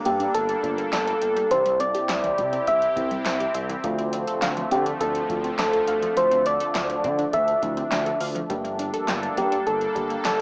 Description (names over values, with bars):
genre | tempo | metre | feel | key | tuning
synth-pop | 103 BPM | 4/4 | straight | G dorian | A4 = 438 Hz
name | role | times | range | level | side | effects
sweeping resonant pad | sustained chords | 0.0-10.4 s | C3 to A4 | -32 LUFS | equal | chorus
impact | sound effects | 0.0-1.5 s | none | barely audible | none | none
soft struck synth lead | melody | 0.1-10.4 s | G4 to E5 | -26 LUFS | equal | chorus, cassette tape, analog delay
unison pluck | arpeggios | 0.1-10.4 s | E3 to G5 | -35 LUFS | equal | analog delay
smooth gliding synth bass | bass | 0.1-10.4 s | G1 to D3 | -34 LUFS | equal | none
electro analog drum machine | drums | 0.1-10.4 s | handclaps, hi-hat, kick drum, snare drum | -33 LUFS | equal | none
mellow FM electric piano | accompaniment | 0.6-10.4 s | A3 to G4 | -36 LUFS | equal | chorus
room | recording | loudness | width
moderate booth ambience, RT60 0.2 s | home recording on cassette, small speaker sound | -24 LUFS | mono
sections
0.0-10.4 A section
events
impact 0.0-1.5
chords
0.0 Gmadd9; 1.5 C; 3.8 Dm7; 8.5 Gmadd9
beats
0.34 0.93 | 1.51 2.09 2.67 3.26 | 3.84 4.42 5.00 5.59 | 6.17 6.75 7.33 7.92 | 8.50 9.08 9.66 10.25